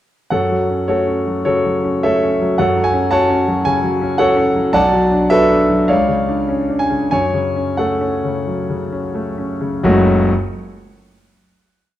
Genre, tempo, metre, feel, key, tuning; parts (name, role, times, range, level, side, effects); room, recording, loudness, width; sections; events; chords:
classical, romantic character piece for solo piano; 85-114 BPM; 4/4; rubato; F# minor; A4 = 440 Hz
clear concert grand piano; solo; 0.3-10.3 s; F#1 to A5; -14 LUFS; equal
moderate recital hall reverb, RT60 1.3 s; dark, warm production; -14 LUFS; side -12 dB against mid
0.3-9.8 A section; 9.8-12.0 final chord
slowing down 3.7-9.8
0.3 F#m; 4.8 Bm7; 5.9 C#; 7.1 F#m